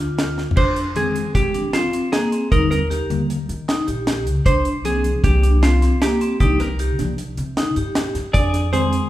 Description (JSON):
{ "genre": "progressive instrumental, band music in an uneven meter", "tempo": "154 BPM", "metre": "5/4", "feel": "straight", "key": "unclear", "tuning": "A4 = 440 Hz", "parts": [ { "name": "hollow-body jazz guitar", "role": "melody", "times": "0.0-9.1 s", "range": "F4 to D5", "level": "-22 LUFS", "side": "right 2 dB", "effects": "none" }, { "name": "vibraphone with medium hard mallets", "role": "arpeggios", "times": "0.0-8.9 s", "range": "Bb3 to G4", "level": "-24 LUFS", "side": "left 2 dB", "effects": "none" }, { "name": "upright bass", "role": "bass", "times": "0.0-9.0 s", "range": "Bb1 to Eb3", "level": "-21 LUFS", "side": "equal", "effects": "none" }, { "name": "deep reggae drum kit", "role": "drums", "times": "0.0-9.0 s", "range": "crash cymbal, hi-hat, kick drum, snare drum, toms", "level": "-21 LUFS", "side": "equal", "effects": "none" }, { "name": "mellow tine electric piano", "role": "accompaniment", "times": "1.0-9.1 s", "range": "D3 to D4", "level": "-26 LUFS", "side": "left 1 dB", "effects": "medium stereo tremolo" }, { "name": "clean electric guitar", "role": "second line", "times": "8.3-9.1 s", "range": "Ab4", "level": "-25 LUFS", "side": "left 4 dB", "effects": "spring reverb" } ], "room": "moderate recital hall reverb, RT60 1.5 s", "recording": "recorded in a church or concert hall", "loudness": "-17 LUFS", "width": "side -14 dB against mid", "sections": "0.6-9.1 A section", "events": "drum fill 0.4", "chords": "0.0 Dm; 0.6 Fm; 2.5 Eb; 4.5 C7(no3); 8.3 Fm" }